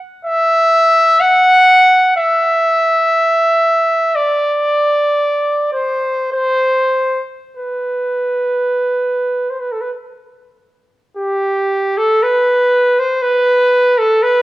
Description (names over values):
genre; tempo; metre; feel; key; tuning
classical, free, expressive piece for unaccompanied trumpet; 42-63 BPM; 4/4; rubato; E minor; A4 = 440 Hz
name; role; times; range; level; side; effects
clear trumpet; solo; 0.2-14.4 s; G4 to F#5; -12 LUFS; equal; none
room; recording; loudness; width
wet recital hall reverb, RT60 1.7 s; worn, warbling old tape, cassette tape, warbly pitch drift; -11 LUFS; side -17 dB against mid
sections
0.0-11.2 A section; 11.2-14.4 B section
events
none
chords
none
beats
0.24 1.20 | 2.16 3.15 4.15 5.17 | 6.32 7.55 8.75 9.90 | 11.17 12.23 13.24 14.25